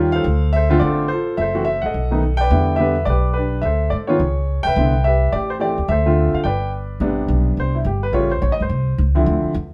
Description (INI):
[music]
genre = jazz piano trio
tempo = 213 BPM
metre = 4/4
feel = swing 61% on 8ths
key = unclear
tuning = A4 = 440 Hz
[part]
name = warm baby grand piano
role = melody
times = 0.0-9.5 s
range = C3 to G5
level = -21 LUFS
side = equal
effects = none
[part]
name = upright bass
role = bass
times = 0.0-9.7 s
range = F#1 to Ab2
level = -22 LUFS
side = equal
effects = none
[sound]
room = moderate studio reverb, RT60 0.6 s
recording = band playing live in one room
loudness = -19 LUFS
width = mono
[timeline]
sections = 0.0-7.0 A section; 7.0-9.7 B section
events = grand piano solo 7.0-9.7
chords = 0.2 Dm7; 1.4 F#m7b5; 1.9 B7; 2.5 Em7; 3.6 D7(no3); 4.2 Db5; 4.8 Cmaj9; 5.3 Am7; 5.9 Dm7; 6.5 G; 7.0 Am11; 8.1 Aaug